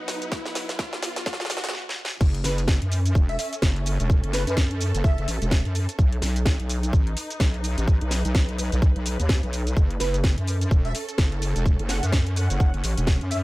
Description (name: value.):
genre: bass house.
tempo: 127 BPM.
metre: 4/4.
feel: swing 59% on 16ths.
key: F# dorian.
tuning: A4 = 440 Hz.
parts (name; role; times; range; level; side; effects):
sweeping resonant pad; sustained chords; 0.0-1.7 s; F#3 to B4; -41 LUFS; right 1 dB; chorus, sidechain pumping.
riser; sound effects; 0.0-1.7 s; none; -35 LUFS; equal; none.
warm studio string section; texture; 0.0-13.4 s; C#4 to F#5; -37 LUFS; right 1 dB; sidechain pumping.
garage drum kit; drums; 0.1-13.4 s; crash cymbal, hi-hat, shaker, snare drum; -29 LUFS; equal; high-pass filter on snare, small room ambience, high-pass filter on hats, high-pass filter on perc, high-pass filter on cymbals.
electronic kick drum; drums; 0.3-13.2 s; none; -20 LUFS; equal; small room ambience.
wobble bass; bass; 2.2-13.4 s; E1 to F#2; -25 LUFS; equal; chorus, overdrive, sidechain pumping.
plucky unison lead; melody; 2.4-5.4, 10.0-13.4 s; B4 to F#5; -32 LUFS; right 1 dB; ensemble chorus, digital delay.
room: little or no reverb.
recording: high-pass filter.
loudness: -21 LUFS.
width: side -19 dB against mid.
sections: 0.0-2.2 A section; 2.2-13.4 B section.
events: build-up 0.0-2.2; drum fill 0.0-1.7, 1.7-2.2; riser 0.0-1.7; filter sweep 0.0-2.2; stop 1.7-2.2; drop 2.2-13.4.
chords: 0.0 B; 2.2 F#m; 6.0 B; 9.8 F#m.